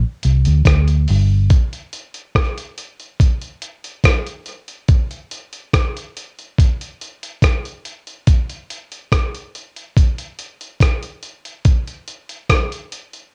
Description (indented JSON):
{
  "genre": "dub reggae",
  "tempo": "71 BPM",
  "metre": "4/4",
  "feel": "straight",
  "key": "unclear",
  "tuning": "A4 = 441 Hz",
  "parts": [
    { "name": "vintage muted fingered electric bass", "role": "bass", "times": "0.0-1.5 s", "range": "G1 to D2", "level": "-15 LUFS", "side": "equal", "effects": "tube saturation" },
    { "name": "dusty soul sampler-style drum kit", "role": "drums", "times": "0.2-13.3 s", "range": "hi-hat, kick drum, rim click", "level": "-18 LUFS", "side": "equal", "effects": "cassette tape" }
  ],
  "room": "light reverb",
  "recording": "home recording on cassette",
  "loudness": "-18 LUFS",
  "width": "mono",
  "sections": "0.0-1.5 A section; 1.5-13.3 B section",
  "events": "none",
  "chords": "none"
}